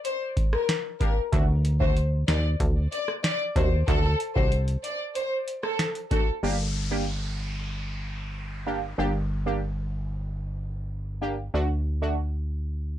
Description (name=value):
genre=dancehall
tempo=94 BPM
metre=4/4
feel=straight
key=G harmonic minor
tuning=A4 = 444 Hz
part: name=dark studio violin section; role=melody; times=0.0-6.2 s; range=A4 to D5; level=-29 LUFS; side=left 3 dB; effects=analog delay
part: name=booming analog drum machine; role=drums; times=0.0-6.3 s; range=hi-hat, kick drum, rim click, snare drum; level=-26 LUFS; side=equal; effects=none
part: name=synth brass stab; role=accompaniment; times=1.0-12.2 s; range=A3 to G4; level=-30 LUFS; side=right 2 dB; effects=chorus, phaser
part: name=plucky analog bass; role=bass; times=1.3-13.0 s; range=G1 to Eb2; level=-26 LUFS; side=equal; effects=none
part: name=downlifter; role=sound effects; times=6.4-11.5 s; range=none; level=-38 LUFS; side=left 1 dB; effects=none
room=little or no reverb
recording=dry, gritty hardware recording, cassette tape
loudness=-24 LUFS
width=side -12 dB against mid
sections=0.0-6.4 A section; 6.4-13.0 B section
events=none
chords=0.0 Gm; 1.3 D; 6.4 Gm; 11.5 D